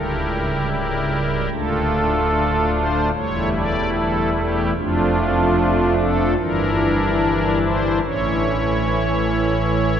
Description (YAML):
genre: classical, chorale-style piece for pipe organ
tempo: 74 BPM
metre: 4/4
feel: straight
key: D minor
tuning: A4 = 441 Hz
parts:
  - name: pipe organ, strings celeste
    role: solo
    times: 0.0-10.0 s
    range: C#1 to D5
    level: -17 LUFS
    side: equal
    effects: none
room: wet cathedral reverb, RT60 5.1 s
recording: none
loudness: -17 LUFS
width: side -8 dB against mid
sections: 0.0-10.0 A section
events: none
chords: 0.0 C#dim7; 1.5 Dm; 3.1 A5/E; 4.8 Dm/F; 6.4 Em7b5/G; 8.0 A